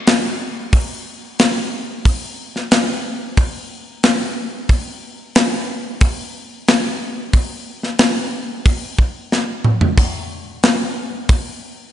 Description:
metal; 91 BPM; 4/4; straight
modern studio drum kit; drums; 0.1-11.4 s; hi-hat, kick drum, snare drum, splash cymbal, toms; -16 LUFS; equal
moderate lush hall reverb, RT60 2.5 s; big arena sound, nothing above 10.4 kHz; -16 LUFS; side -11 dB against mid
0.0-11.9 A section
drum fill 9.3-10.0

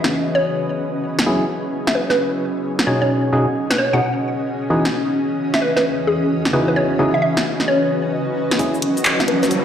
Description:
UK garage, two-step garage; 131 BPM; 4/4; swing 65% on 16ths; C# minor; A4 = 440 Hz
airy breathy pad; sustained chords; 0.0-9.6 s; B2 to D#5; -26 LUFS; left 1 dB; chorus, vintage 12-bit sampler grit, sidechain pumping
house drum kit; drums; 0.0-9.6 s; handclaps, hi-hat, shaker, snare drum; -20 LUFS; equal
granular cloud pad; texture; 0.0-9.6 s; E3 to D#5; -23 LUFS; equal; built-in reverb, sidechain pumping
hollow square pluck; melody; 0.3-9.5 s; G#4 to F#5; -21 LUFS; equal; chorus, digital delay
percussive organ stab; stabs; 1.3-8.8 s; B2 to G#4; -20 LUFS; equal; chorus, digital delay
electronic kick drum; drums; 8.6-8.7 s; -26 LUFS; left 1 dB; high-pass filter on kick
riser; sound effects; 8.9-9.6 s; -25 LUFS; right 1 dB
wet digital room reverb, RT60 1.0 s; played on a big sound system in a bare room, stone room reverb; -16 LUFS; side -9 dB against mid
0.0-8.6 A section; 8.6-9.6 B section
build-up 8.6-9.6; filter sweep on synth pluck 8.6-9.6; filter sweep on analog synth pad 8.6-9.6; riser 8.9-9.6
0.0 C#m11; 1.3 F#7sus4; 2.9 B69; 4.7 Emaj9; 6.5 C#m11; 8.6 F#7sus4

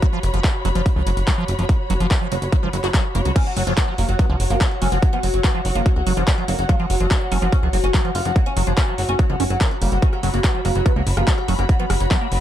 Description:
psychedelic trance; 144 BPM; 4/4; straight; A4 = 439 Hz
liquid acid bass; riff; 0.0-12.3 s; E#3 to F#4; -27 LUFS; moving between left 2 dB and right 5 dB; phaser, auto-pan, sidechain pumping, tape echo
big-room dance drum kit; drums; 0.0-12.4 s; crash cymbal, handclaps, hi-hat, rim click; -27 LUFS; left 1 dB
electronic kick drum; drums; 0.0-12.2 s; -18 LUFS; equal
warm studio string section; texture; 0.0-12.4 s; F#4 to B5; -30 LUFS; right 1 dB; sidechain pumping
plucky analog bass; bass; 0.2-12.4 s; F#1 to C#2; -21 LUFS; equal
oud; melody; 3.4-12.4 s; F#3 to E#4; -26 LUFS; left 1 dB; phaser, sidechain pumping, tape echo
evolving wavetable pad; sustained chords; 4.1-12.4 s; F#4; -29 LUFS; equal; chorus, built-in reverb, phaser, sidechain pumping
digital ambience; dark, warm production; -17 LUFS; side -11 dB against mid
0.0-12.4 A section
0.0 F#5

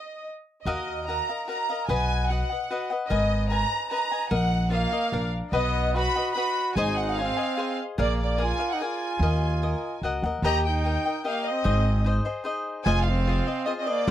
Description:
mexican folk, mariachi; 148 BPM; 3/4; straight; Eb minor, Eb major from 10.4 s; A4 = 440 Hz
rich studio violin section; melody; 0.0-14.1 s; D5 to B5; -28 LUFS; equal
cavaquinho; accompaniment; 0.7-14.1 s; D4 to Ab5; -30 LUFS; left 4 dB
upright bass; bass; 0.7-14.1 s; F1 to Eb2; -25 LUFS; equal
clear trumpet; second line; 4.7-14.1 s; Bb3 to G4; -31 LUFS; right 5 dB
little or no reverb; dry, close 1970s-style studio recording; -23 LUFS; side -11 dB against mid
0.7-10.4 A section; 10.4-14.1 B section
stop 0.0-0.7
0.0 N.C.; 0.7 Ebmadd9; 1.9 B; 3.1 Abmadd9; 4.3 Bbsus4; 5.1 Bb; 5.5 B; 6.8 Ab; 8.0 Bb7; 9.2 Ebm; 10.4 Eb; 11.7 Ab; 12.9 Fm7

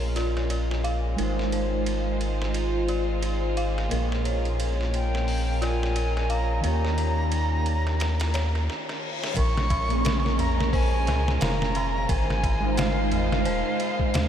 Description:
trip hop; 88 BPM; 4/4; swing 58% on 16ths; Bb dorian; A4 = 438 Hz
mellow electric guitar; accompaniment; 0.0-14.3 s; Bb2 to Db5; -31 LUFS; right 2 dB; harmonic tremolo, vintage 12-bit sampler grit, tape echo
clear studio violin section; sustained chords; 0.0-14.3 s; G3 to C5; -33 LUFS; left 1 dB; vintage 12-bit sampler grit, low-pass filter
dark detuned synth bell; arpeggios; 0.0-14.3 s; F4 to F5; -34 LUFS; left 3 dB; chorus, tremolo, low-pass filter, tape echo
round analog bass; bass; 0.0-14.3 s; Eb1 to Eb2; -26 LUFS; equal
backwards swelling texture; texture; 0.8-8.7 s; F4; -38 LUFS; left 1 dB
trip hop sampler-style drum kit; drums; 0.2-14.3 s; hi-hat, kick drum, ride cymbal, snare drum; -31 LUFS; equal; high-pass filter on cymbals, high-pass filter on snare, high-pass filter on kick, high-pass filter on hats, high-pass filter on room
bright concert flute; melody; 4.9-14.3 s; F5 to Db6; -30 LUFS; equal; vintage 12-bit sampler grit, tape echo
reverse cymbal; sound effects; 8.5-9.4 s; -39 LUFS; left 5 dB
tabla; percussion; 9.4-14.3 s; -38 LUFS; right 2 dB
moderate huge ambient reverb, RT60 8.3 s; dreamy mix soaked in reverb; -23 LUFS; side -9 dB against mid
0.0-9.4 A section; 9.4-14.3 B section
filter sweep on synth bell 0.0-9.4; reverse cymbal 8.5-9.4; break 8.7-9.4; drum fill 8.7-9.4
0.0 Bbm7; 1.2 Ab6; 3.9 Bbm7; 6.6 Eb7; 9.4 Bbm7; 12.1 Ab6

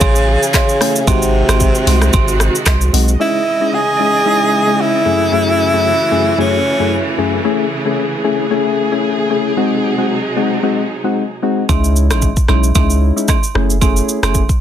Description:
afrobeats; 113 BPM; 4/4; swing 55% on 16ths; C# harmonic minor; A4 = 440 Hz
breathy tenor saxophone; melody; 0.0-7.1 s; B#2 to G#4; -16 LUFS; equal; ping-pong delay
warm studio string section; sustained chords; 0.0-11.7 s; B#2 to D#5; -20 LUFS; right 3 dB; sidechain pumping
punchy sub bass; bass; 0.0-3.2, 11.7-14.5 s; F#1 to C#2; -14 LUFS; equal
afro-pop drum kit; drums; 0.0-3.2, 11.7-14.6 s; handclaps, hi-hat, kick drum, rim click, shaker; -15 LUFS; equal
agogo bells and woodblock; percussion; 0.0-2.8, 11.7-14.3 s; -23 LUFS; right 11 dB
soft electric-piano-like synth keys; accompaniment; 0.8-14.4 s; F#2 to G#4; -17 LUFS; left 4 dB; chorus
light reverb; dense, heavily limited modern master; -12 LUFS; side -10 dB against mid
0.0-3.2 A section; 3.2-11.7 B section; 11.7-14.6 C section
0.0 F#m7; 1.1 G#7; 3.2 C#madd9; 5.1 F#m7; 7.4 Amaj7; 9.6 G#7; 11.7 C#madd9; 13.6 F#m7

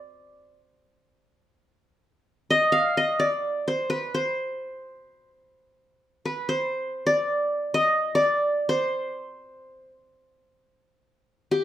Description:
Arabic maqam ensemble; free time; A4 = 440 Hz
qanun; solo; 0.0-11.6 s; G4 to F5; -22 LUFS; equal
wet studio reverb, RT60 0.6 s; rough home demo mix; -22 LUFS; side -12 dB against mid
0.0-11.6 A section

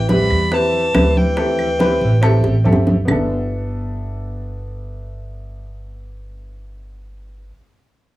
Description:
Afro-Cuban jazz; 140 BPM; 4/4; straight; G major; A4 = 441 Hz
rich violin; melody; 0.0-2.7 s; G5 to B5; -24 LUFS; left 1 dB
clear tenor saxophone; second line; 0.0-2.7 s; E3 to G3; -21 LUFS; left 2 dB
upright bass; bass; 0.0-7.5 s; G1 to E2; -21 LUFS; equal
clear baby grand piano; accompaniment; 0.1-7.5 s; B3 to B4; -21 LUFS; right 1 dB
bongos; percussion; 0.1-3.2 s; -23 LUFS; left 1 dB
congas; percussion; 0.1-3.2 s; -20 LUFS; right 1 dB
claves; percussion; 0.3-3.2 s; -29 LUFS; right 2 dB
light reverb; small room ambience; -14 LUFS; side -16 dB against mid
0.0-3.1 A section; 3.1-6.5 B section
drum fill 2.4-3.1
0.0 Am9; 1.4 D9sus4; 3.1 G6

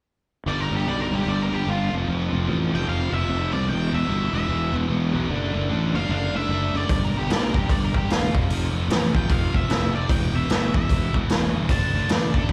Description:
blues rock power trio and southern rock; 150 BPM; 4/4; swing 62% on 8ths; G mixolydian; A4 = 440 Hz
octave-fuzz lead guitar; melody; 0.5-12.5 s; F4 to A5; -31 LUFS; equal; distortion, plate reverb, slapback echo
overdriven electric guitar; riff; 0.5-12.5 s; E2 to D4; -29 LUFS; equal
fuzz fingered electric bass; bass; 0.5-12.5 s; E1 to C2; -27 LUFS; equal; overdrive
raw garage drum kit; drums; 6.9-12.5 s; hi-hat, kick drum, snare drum; -24 LUFS; equal
light reverb; live gig heard through the venue's PA, club reverb; -23 LUFS; mono
0.5-12.5 A section
0.5 G; 1.9 F; 3.7 Em; 5.3 D/F#; 6.9 G; 8.3 F; 10.1 Em; 11.7 D/F#

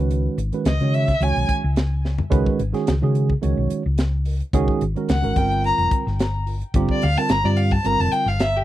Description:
electric jazz fusion; 108 BPM; 4/4; straight; A4 = 439 Hz
tine electric piano; accompaniment; 0.0-8.5 s; D3 to C#5; -24 LUFS; right 5 dB; analog chorus
hollow-body short-scale fingered electric bass; bass; 0.0-8.6 s; F1 to C#3; -21 LUFS; left 1 dB
tight funk drum kit; drums; 0.1-8.5 s; hi-hat, kick drum, snare drum, toms; -23 LUFS; equal
rich violin; melody; 0.7-1.5, 5.1-8.6 s; G4 to Bb5; -23 LUFS; left 2 dB; tape echo
little or no reverb; dry, close 1970s-style studio recording; -18 LUFS; side -14 dB against mid
0.0-8.6 A section
violin solo 0.0-8.6; drum fill 2.0
0.0 C#sus2; 5.4 Gm7

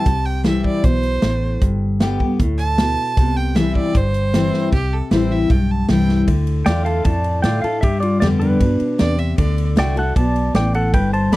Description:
honky-tonk and classic country; 154 BPM; 4/4; straight; C major; A4 = 440 Hz
clear fiddle; second line; 0.0-6.2, 9.0-9.7 s; G4 to A5; -24 LUFS; right 3 dB
picked steel-string acoustic guitar; accompaniment; 0.0-11.4 s; G2 to G4; -20 LUFS; left 2 dB
vintage muted fingered electric bass; bass; 0.1-11.4 s; F1 to A2; -20 LUFS; equal
natural country drum kit; drums; 0.1-11.4 s; hi-hat, kick drum, ride cymbal, snare drum; -19 LUFS; equal
pedal steel guitar; melody; 6.7-11.4 s; D4 to B5; -21 LUFS; equal
light reverb; dry, close 1970s-style studio recording; -15 LUFS; side -18 dB against mid
0.0-4.7 A section; 4.7-6.3 B section; 6.3-11.4 C section
fiddle solo 0.0-4.7; drum fill 4.5, 6.1
0.0 C; 1.6 G; 3.2 C; 6.3 Dm; 7.8 G; 9.4 D

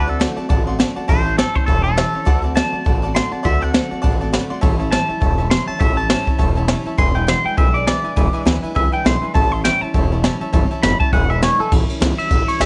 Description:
rockabilly; 203 BPM; 4/4; swing 58% on 8ths; A mixolydian; A4 = 436 Hz
twangy electric guitar; melody; 0.0-12.7 s; A4 to C6; -23 LUFS; equal; phaser, analog delay
picked steel-string acoustic guitar; accompaniment; 0.0-12.7 s; E2 to F#4; -28 LUFS; equal
upright bass; bass; 0.0-12.7 s; E1 to D2; -23 LUFS; equal
bright upright piano; accompaniment; 0.1-11.7 s; B4 to C6; -30 LUFS; equal; plate reverb
jazz brush drum kit; drums; 0.2-12.7 s; hi-hat, kick drum, ride cymbal, snare drum; -21 LUFS; equal
little or no reverb; nothing above 10.4 kHz; -17 LUFS; mono
0.0-11.7 A section
clean electric guitar solo 0.0-11.7
0.0 D7; 1.1 A7; 2.3 D7; 4.6 A7; 7.0 E7; 9.4 A7; 11.1 E7; 11.7 A7

